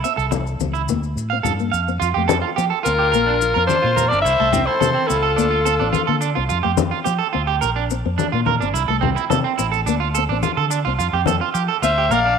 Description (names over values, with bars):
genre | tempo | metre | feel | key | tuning
highlife guitar band | 107 BPM | 4/4 | straight | F major | A4 = 440 Hz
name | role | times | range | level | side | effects
nylon-string guitar | accompaniment | 0.0-12.3 s | F3 to C4 | -27 LUFS | left 13 dB | none
electric guitar at the edge of break-up | arpeggios | 0.0-12.3 s | C4 to F5 | -21 LUFS | right 12 dB | spring reverb, slapback echo
maracas | percussion | 0.0-12.2 s | none | -31 LUFS | left 14 dB | none
fingered electric bass | bass | 0.2-12.4 s | G1 to F3 | -23 LUFS | equal | none
congas | percussion | 0.3-12.2 s | none | -25 LUFS | left 10 dB | none
raspy alto saxophone | melody | 2.8-6.2, 11.8-12.4 s | A4 to F5 | -18 LUFS | left 2 dB | slapback echo
bright trumpet | second line | 2.9-6.2, 11.8-12.4 s | F4 to D5 | -27 LUFS | left 13 dB | none
room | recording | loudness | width
light reverb | 1960s-style stereo with parts hard left and right | -17 LUFS | side -6 dB against mid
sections
0.0-2.0 A section; 2.0-12.4 B section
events
none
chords
0.0 C; 0.9 Dm; 2.0 Fadd9; 3.1 Bb; 4.3 C6; 5.4 Dm; 6.5 Fadd9; 7.6 Bb; 8.7 C6; 9.9 Dm; 11.0 Fadd9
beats
0.32 0.88 1.44 | 2.01 2.57 3.13 3.69 | 4.25 4.82 5.38 5.94 | 6.50 7.06 7.62 8.19 | 8.75 9.31 9.87 10.43 | 10.99 11.55 12.11